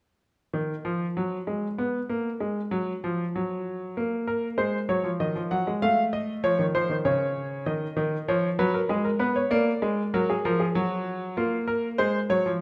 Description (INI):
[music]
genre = classical, baroque-style two-part invention for grand piano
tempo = 97 BPM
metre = 3/4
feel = straight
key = unclear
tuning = A4 = 438 Hz
[part]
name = clear concert grand piano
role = solo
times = 0.5-12.6 s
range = Db3 to Gb5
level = -27 LUFS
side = equal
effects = none
[sound]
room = wet recital hall reverb, RT60 1.6 s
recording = none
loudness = -27 LUFS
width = mono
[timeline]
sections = 0.2-12.6 A section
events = none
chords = 0.2 N.C.; 4.0 Bbm; 5.2 Ebmadd9; 5.8 F7/A; 7.1 N.C.; 7.7 Ebm; 8.9 Abmadd9; 9.5 Bb7; 10.7 N.C.; 11.4 Bbm